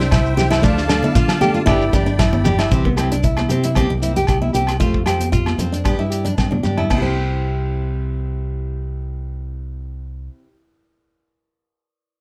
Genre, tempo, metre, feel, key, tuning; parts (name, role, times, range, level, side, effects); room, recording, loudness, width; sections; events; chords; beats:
highlife guitar band; 114 BPM; 4/4; straight; C major; A4 = 437 Hz
picked plugged-in steel-string acoustic guitar; accompaniment; 0.0-10.6 s; E3 to A4; -27 LUFS; equal
musette accordion; sustained chords; 0.0-2.7 s; C5 to B5; -29 LUFS; equal
nylon-string guitar; arpeggios; 0.0-10.4 s; B3 to C5; -24 LUFS; equal; slapback echo
fingered electric bass; bass; 0.0-10.3 s; G1 to D3; -24 LUFS; equal
warm soul drum kit; drums; 0.0-7.0 s; crash cymbal, hi-hat, kick drum, rim click, snare drum, toms; -24 LUFS; equal
agogo bells; percussion; 0.1-7.0 s; -31 LUFS; equal
shekere; percussion; 0.1-7.2 s; -26 LUFS; equal
congas; percussion; 0.4-7.2 s; -27 LUFS; equal
moderate studio reverb, RT60 0.5 s; -18 LUFS; mono
0.0-2.7 A section; 2.7-6.9 B section; 6.9-11.1 C section
drum fill 1.7-2.7, 6.4-6.9
0.0 C; 0.6 Dm; 1.7 G; 2.7 C; 3.8 C7; 4.8 F; 5.9 G; 6.9 C
0.12 | 0.63 1.15 1.67 2.19 | 2.71 3.23 3.75 4.28 | 4.80 5.33 5.85 6.38 | 6.91 7.43 7.96 8.49 | 9.02 9.55 10.08